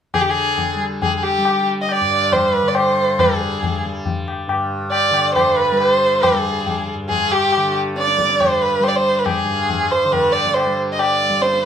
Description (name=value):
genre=indian classical, Hindustani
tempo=138 BPM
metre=7/4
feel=straight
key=unclear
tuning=A4 = 440 Hz
part: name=rich violin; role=melody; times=0.1-11.7 s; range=G4 to Eb5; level=-16 LUFS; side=right 1 dB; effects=none
part: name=tanpura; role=drone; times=0.1-11.7 s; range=G2 to G3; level=-25 LUFS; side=equal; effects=none
part: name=tabla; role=percussion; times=0.1-11.7 s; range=none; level=-23 LUFS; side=left 4 dB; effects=none
room=light reverb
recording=close, detailed microphones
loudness=-15 LUFS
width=side -8 dB against mid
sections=0.1-11.7 A section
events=none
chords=none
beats=| 0.15 0.58 1.02 1.45 1.89 2.32 2.75 | 3.19 3.62 4.06 4.49 4.92 5.36 5.79 | 6.22 6.66 7.09 7.53 7.96 8.39 8.82 | 9.26 9.69 10.12 10.55 10.98 11.41